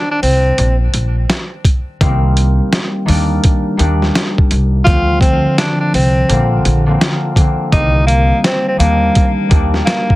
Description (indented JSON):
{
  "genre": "hip hop, boom-bap hip-hop",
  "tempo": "84 BPM",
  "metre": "4/4",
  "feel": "swing 63% on 16ths",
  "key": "unclear",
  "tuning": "A4 = 440 Hz",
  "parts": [
    { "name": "clear tenor saxophone", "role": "melody", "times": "0.0-10.2 s", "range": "Bb3 to F4", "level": "-16 LUFS", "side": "equal", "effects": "high-pass filter, low-pass filter, ping-pong delay" },
    { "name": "upright bass", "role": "bass", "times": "0.2-9.8 s", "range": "Bb1 to Eb2", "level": "-14 LUFS", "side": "equal", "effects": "none" },
    { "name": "boom bap sampler-style drum kit", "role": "drums", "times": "0.2-10.2 s", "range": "hi-hat, kick drum, snare drum", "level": "-14 LUFS", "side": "equal", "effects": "none" },
    { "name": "concert harp", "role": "accompaniment", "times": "2.0-10.2 s", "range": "D3 to D4", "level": "-17 LUFS", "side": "left 1 dB", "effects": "cassette tape, high-pass filter, low-pass filter" }
  ],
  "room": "light reverb",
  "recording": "heavily compressed radio sound, multiband compression",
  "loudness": "-11 LUFS",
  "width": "side -18 dB against mid",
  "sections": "0.0-10.2 A section",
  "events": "break 0.0-2.0",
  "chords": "0.0 N.C.; 2.0 Cm7; 3.1 Ebmaj7; 4.9 Dm7; 6.3 Bbadd9; 7.7 Cm7; 8.8 Ebmaj7",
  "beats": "0.58 1.29 | 2.01 2.72 3.44 4.15 | 4.87 5.58 6.29 7.01 | 7.72 8.44 9.15 9.87"
}